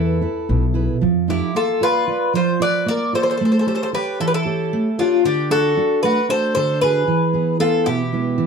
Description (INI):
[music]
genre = greek folk, Greek bouzouki band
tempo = 228 BPM (eighths)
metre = 7/8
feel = straight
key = unclear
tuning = A4 = 441 Hz
[part]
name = Greek bouzouki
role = melody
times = 0.0-8.5 s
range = F4 to D5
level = -19 LUFS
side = left 2 dB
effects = slapback echo
[part]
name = mandolin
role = second line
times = 0.0-8.5 s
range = D4 to B4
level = -27 LUFS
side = left 2 dB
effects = none
[part]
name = fingerpicked steel-string acoustic guitar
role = accompaniment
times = 0.0-8.5 s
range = B2 to D5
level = -20 LUFS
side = right 4 dB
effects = none
[part]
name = upright bass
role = bass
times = 0.0-1.4 s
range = B1 to F2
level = -21 LUFS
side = left 2 dB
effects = none
[sound]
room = wet small room reverb, RT60 0.5 s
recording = dark, warm production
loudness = -16 LUFS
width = side -6 dB against mid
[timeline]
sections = 0.0-1.5 A section; 1.5-8.5 B section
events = none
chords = 0.0 E; 1.0 F7; 1.5 Bb; 3.4 A7; 5.2 D; 7.1 E